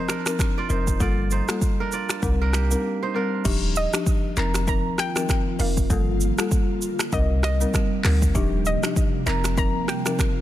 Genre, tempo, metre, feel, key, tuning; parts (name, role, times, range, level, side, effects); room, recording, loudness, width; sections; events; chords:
afrobeats; 98 BPM; 4/4; swing 58% on 16ths; A4 = 441 Hz
folk marimba with medium mallets; accompaniment; 0.0-10.3 s; F3 to Bb4; -27 LUFS; left 3 dB
kora; riff; 0.0-4.8 s; Bb3 to Eb5; -30 LUFS; right 6 dB; digital delay
afro-pop drum kit; drums; 0.1-10.4 s; crash cymbal, finger snaps, handclaps, hi-hat, kick drum, rim click, shaker; -24 LUFS; equal; soft clipping on snare
clean 808-style bass; bass; 0.7-9.8 s; Eb1 to D2; -23 LUFS; equal
ethereal airy pad; sustained chords; 4.3-10.4 s; C3 to F4; -31 LUFS; right 2 dB; ensemble chorus, built-in reverb, phaser, sidechain pumping
soft round pluck; melody; 3.8-10.4 s; Eb5 to Bb5; -29 LUFS; equal; chorus, digital delay
little or no reverb; dense, heavily limited modern master; -20 LUFS; side -13 dB against mid
0.0-3.5 A section; 3.5-10.4 B section
break 2.8-3.5
0.0 F7sus4; 1.0 Gm9; 2.2 Cm7; 3.5 Ebmaj9; 4.4 F7sus4; 5.9 Gm9; 7.1 Cm7; 8.4 Ebmaj9; 9.3 F7sus4